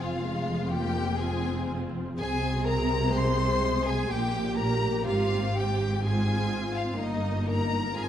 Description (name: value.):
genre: classical, slow romantic movement for string orchestra.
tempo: 62 BPM.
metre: 3/4.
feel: rubato.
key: unclear.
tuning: A4 = 438 Hz.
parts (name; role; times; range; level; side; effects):
rich chamber violin section; melody; 0.0-8.1 s; Eb5 to C6; -33 LUFS; left 4 dB; none.
rich chamber violin section; second line; 0.0-8.1 s; Eb4 to C5; -34 LUFS; left 2 dB; none.
warm studio viola section; accompaniment; 0.0-8.1 s; Ab3 to Ab4; -32 LUFS; right 1 dB; none.
rich studio double bass section; bass; 0.0-8.1 s; F1 to C2; -31 LUFS; right 1 dB; none.
warm chamber cello section; bass; 0.0-8.1 s; F2 to C3; -32 LUFS; right 1 dB; none.
room: moderate concert hall reverb, RT60 2.2 s.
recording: dark, warm production, vinyl crackle.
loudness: -25 LUFS.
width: side -10 dB against mid.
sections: 0.0-8.1 A section.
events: none.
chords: 0.0 Fm; 2.2 Ab/C; 4.1 Gm/Bb; 5.1 Fm/Ab; 7.0 Eb/G.